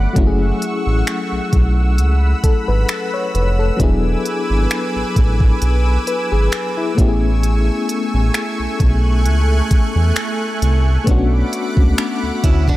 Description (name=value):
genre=contemporary R&B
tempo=66 BPM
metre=4/4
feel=swing 54% on 16ths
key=F# minor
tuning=A4 = 439 Hz
part: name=FM electric piano with tremolo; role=accompaniment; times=0.0-12.8 s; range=F#3 to C#5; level=-21 LUFS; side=left 4 dB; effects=none
part: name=lush unison pad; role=sustained chords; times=0.0-12.8 s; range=A3 to F#6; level=-23 LUFS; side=right 2 dB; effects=chorus, sidechain pumping
part: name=round analog bass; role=bass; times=0.0-12.8 s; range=E1 to E2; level=-15 LUFS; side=equal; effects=none
part: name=smooth R&B drum kit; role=drums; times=0.2-12.8 s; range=finger snaps, hi-hat, kick drum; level=-17 LUFS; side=equal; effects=none
part: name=picked steel-string acoustic guitar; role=arpeggios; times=12.4-12.8 s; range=C#4 to F#4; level=-25 LUFS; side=right 5 dB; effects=none
room=digital ambience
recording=none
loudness=-14 LUFS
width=side -16 dB against mid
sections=0.0-12.8 A section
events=none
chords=0.2 F#m7; 3.8 E7; 7.0 Amaj7; 11.1 Bm7